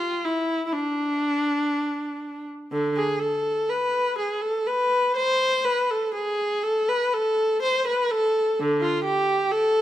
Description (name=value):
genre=classical, baroque-style suite movement for unaccompanied viola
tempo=61 BPM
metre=4/4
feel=rubato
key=A minor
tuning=A4 = 440 Hz
part: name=warm viola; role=solo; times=0.0-9.8 s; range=D3 to C5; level=-22 LUFS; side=equal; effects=none
room=light reverb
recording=close, detailed microphones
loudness=-22 LUFS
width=side -13 dB against mid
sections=0.0-9.8 A section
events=none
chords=none